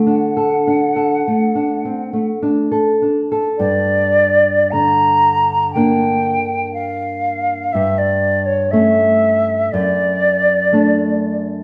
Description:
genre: romantic duo for flute and classical guitar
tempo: 50-62 BPM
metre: 4/4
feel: rubato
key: G minor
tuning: A4 = 439 Hz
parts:
  - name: nylon-string guitar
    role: accompaniment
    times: 0.0-11.6 s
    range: F#2 to A4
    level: -20 LUFS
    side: equal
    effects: none
  - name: hollow concert flute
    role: melody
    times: 0.1-11.5 s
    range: C#5 to Bb5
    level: -18 LUFS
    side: equal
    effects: none
room: wet stone room reverb, RT60 1.2 s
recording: band playing live in one room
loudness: -16 LUFS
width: mono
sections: 0.0-3.6 A section; 3.6-11.6 B section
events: none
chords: 0.0 D; 3.6 Gm; 7.7 A7/G; 9.7 D/F#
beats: 0.07 1.25 2.42 | 3.59 4.72 5.75 6.75 | 7.74 8.73 9.73 10.73

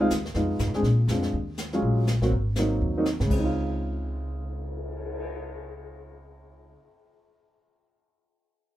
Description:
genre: jazz, small-group swing and bop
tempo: 244 BPM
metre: 4/4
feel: swing 59% on 8ths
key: Db major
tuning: A4 = 440 Hz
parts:
  - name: warm baby grand piano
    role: accompaniment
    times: 0.0-6.8 s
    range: Db3 to Ab4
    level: -26 LUFS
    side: equal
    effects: none
  - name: upright bass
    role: bass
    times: 0.0-6.7 s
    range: Ab1 to Bb2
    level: -27 LUFS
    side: equal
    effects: none
  - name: jazz brush drum kit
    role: drums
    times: 0.1-5.2 s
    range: brushed snare drum, crash cymbal, cymbal swell, hi-hat, kick drum, snare drum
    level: -35 LUFS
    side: left 1 dB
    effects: none
room: wet small room reverb, RT60 0.5 s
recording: heard from further back in the room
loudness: -24 LUFS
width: side -14 dB against mid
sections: 0.0-1.3 A section; 1.3-3.3 B section; 3.3-5.3 C section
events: none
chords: 0.4 Fm7b5; 0.8 Bb7; 1.3 Ebm11; 2.3 Ab7; 3.3 Dbmaj7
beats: 0.10 | 0.35 0.60 0.84 1.09 | 1.34 1.58 1.83 2.08 | 2.32 2.57 2.81 3.06 | 3.31 3.55 3.80 4.05 | 4.29 4.54 4.79 5.03

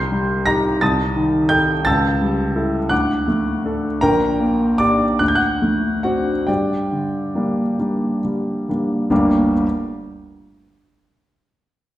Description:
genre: classical, romantic character piece for solo piano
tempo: 45-59 BPM (dotted quarters)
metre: 6/8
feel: rubato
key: G minor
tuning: A4 = 442 Hz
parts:
  - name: clear grand piano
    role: solo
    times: 0.0-9.7 s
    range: G1 to C7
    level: -16 LUFS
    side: equal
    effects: none
room: wet recital hall reverb, RT60 1.4 s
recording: heard from further back in the room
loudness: -16 LUFS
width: side -14 dB against mid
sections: 0.0-9.1 A section; 9.1-11.4 B section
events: slowing down 2.9-9.1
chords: 0.0 Cm; 0.8 Adim/C; 1.9 A7/C#; 2.9 D; 4.0 Gm/Bb; 5.2 D7; 6.5 Gm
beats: 0.81 | 1.86 2.91 | 4.02 5.20 | 6.48 7.80 | 9.11

